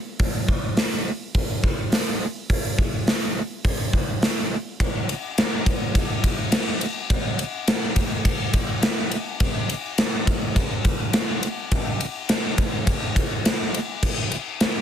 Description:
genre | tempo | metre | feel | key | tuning
rock | 104 BPM | 4/4 | straight | none | none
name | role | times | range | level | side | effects
gated 80s drum kit | drums | 0.2-14.7 s | crash cymbal, hi-hat, kick drum, ride cymbal, snare drum | -21 LUFS | equal | none
room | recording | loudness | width
light reverb | dense, heavily limited modern master | -21 LUFS | side -9 dB against mid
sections
0.0-4.8 A section; 4.8-14.8 B section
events
none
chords
none

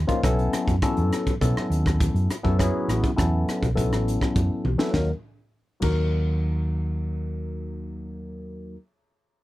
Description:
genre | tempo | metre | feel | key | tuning
electric jazz fusion | 102 BPM | 4/4 | straight | unclear | A4 = 438 Hz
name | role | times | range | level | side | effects
hollow-body short-scale fingered electric bass | bass | 0.0-8.8 s | A1 to B2 | -25 LUFS | equal | none
barky tine electric piano | accompaniment | 0.1-8.8 s | F3 to Bb4 | -27 LUFS | left 2 dB | phaser
crisp fusion drum kit | drums | 0.1-6.0 s | crash cymbal, hi-hat, kick drum, rim click, snare drum, toms | -26 LUFS | equal | none
room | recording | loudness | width
little or no reverb | none | -21 LUFS | side -16 dB against mid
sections
0.0-4.9 A section; 4.9-7.3 B section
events
drum fill 4.6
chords
0.2 B9sus4; 4.9 Ebm

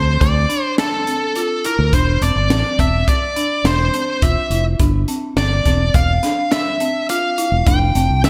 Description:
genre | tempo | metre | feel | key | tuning
progressive instrumental, band music in an uneven meter | 105 BPM | 5/4 | straight | F major | A4 = 440 Hz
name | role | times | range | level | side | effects
high-gain lead guitar | melody | 0.0-8.3 s | A4 to G5 | -22 LUFS | equal | distortion
folk marimba with medium hard mallets | arpeggios | 0.0-8.3 s | C4 to F4 | -26 LUFS | equal | delay
fingered electric bass | bass | 0.0-8.3 s | E1 to D2 | -19 LUFS | equal | none
crisp fusion drum kit | drums | 0.2-8.3 s | hi-hat, kick drum, snare drum | -22 LUFS | equal | gated reverb
room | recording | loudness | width
light reverb, small room ambience | bright 1980s-style digital production | -17 LUFS | mono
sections
0.0-8.3 A section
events
none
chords
0.0 F (rootless); 1.9 C/E; 4.8 G5; 7.7 Fsus2

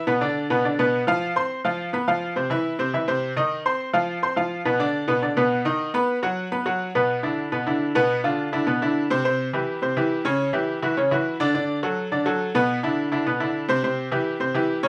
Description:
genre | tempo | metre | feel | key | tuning
latin | 209 BPM | 4/4 | straight | E minor | A4 = 436 Hz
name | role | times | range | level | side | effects
bright upright piano | solo | 0.0-14.9 s | B2 to C6 | -23 LUFS | equal | none
room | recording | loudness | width
moderate studio ambience, RT60 0.5 s | band playing live in one room | -23 LUFS | mono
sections
0.0-6.9 A section; 6.9-14.9 B section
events
none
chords
0.1 Bm; 1.2 F5; 1.8 N.C.; 2.4 C; 3.5 F5; 4.7 Bm; 5.8 B; 6.9 E5; 8.1 Bdim; 8.7 E5; 9.2 C; 10.4 C#dim; 11.0 F#5; 11.5 Bm7; 12.7 E5; 13.8 C

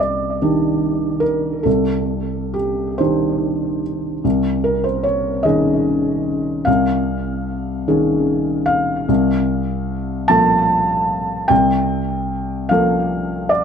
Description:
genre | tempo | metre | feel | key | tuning
neoclassical minimalist piano | 49 BPM (dotted quarters) | 6/8 | rubato | C dorian | A4 = 445 Hz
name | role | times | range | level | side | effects
felt-muted upright piano | solo | 0.0-13.6 s | C2 to A5 | -16 LUFS | equal | tape echo
room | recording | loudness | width
moderate studio reverb, RT60 0.5 s | close, detailed microphones | -16 LUFS | side -7 dB against mid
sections
0.0-13.6 A section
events
none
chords
0.0 Cmadd9; 4.2 Dbadd9/C; 9.1 Bb5/C

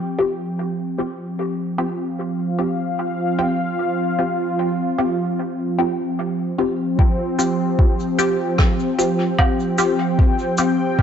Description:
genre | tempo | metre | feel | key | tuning
ambient dub | 75 BPM | 4/4 | swing 56% on 16ths | unclear | A4 = 441 Hz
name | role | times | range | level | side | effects
warm analog pad | sustained chords | 0.0-11.0 s | F3 to G5 | -21 LUFS | equal | chorus
filtered dub chord stab | stabs | 0.0-10.8 s | C4 to G4 | -23 LUFS | left 1 dB | phaser, lush chorus, dub echo
electronic kick drum | drums | 7.0-11.0 s | none | -16 LUFS | equal | overdrive
cabasa, rim click and woodblock | drums | 7.4-10.8 s | none | -25 LUFS | right 1 dB | low-pass filter on snare, low-pass filter on perc, low-pass filter on room, dub echo
room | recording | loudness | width
moderate echo chamber reverb, RT60 2.0 s, small room ambience | echo-heavy mix, nothing above 7.9 kHz | -18 LUFS | side -8 dB against mid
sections
0.0-7.0 A section; 7.0-11.0 B section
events
filter sweep on synth stab 0.0-7.0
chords
0.0 Fsus2

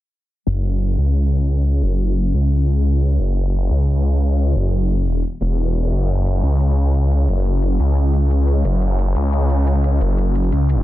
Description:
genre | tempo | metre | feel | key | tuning
dark technical drum and bass | 176 BPM | 4/4 | straight | unclear | A4 = 440 Hz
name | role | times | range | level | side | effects
snarling distorted saw bass | bass | 0.5-10.8 s | E1 to C#2 | -15 LUFS | equal | distortion
electronic hi-hat | drums | 0.5-10.8 s | none | -50 LUFS | right 5 dB | none
room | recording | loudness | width
little or no reverb | dense, heavily limited modern master, low-pass filter | -16 LUFS | side -15 dB against mid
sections
0.5-10.8 A section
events
filter sweep 0.5-10.8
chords
none

